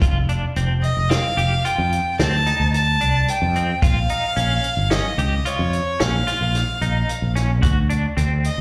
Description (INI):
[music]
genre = progressive instrumental, band music in an uneven meter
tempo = 110 BPM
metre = 7/4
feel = straight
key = F mixolydian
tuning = A4 = 439 Hz
[part]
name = clean electric guitar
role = arpeggios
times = 0.0-8.5 s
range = C4 to G4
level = -29 LUFS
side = equal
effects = tremolo, slapback echo
[part]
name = fretless electric bass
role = bass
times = 0.0-8.6 s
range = F1 to F2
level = -22 LUFS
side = equal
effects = none
[part]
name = vintage drum kit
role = drums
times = 0.0-8.6 s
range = hi-hat, kick drum, snare drum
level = -26 LUFS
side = equal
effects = none
[part]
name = rich violin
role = melody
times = 0.8-8.6 s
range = Db5 to A5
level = -25 LUFS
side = equal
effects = none
[sound]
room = light reverb, small room ambience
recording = live gig heard through the venue's PA, club reverb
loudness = -20 LUFS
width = mono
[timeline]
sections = 0.0-8.6 A section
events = none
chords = 0.0 F; 3.8 Bbm; 7.6 D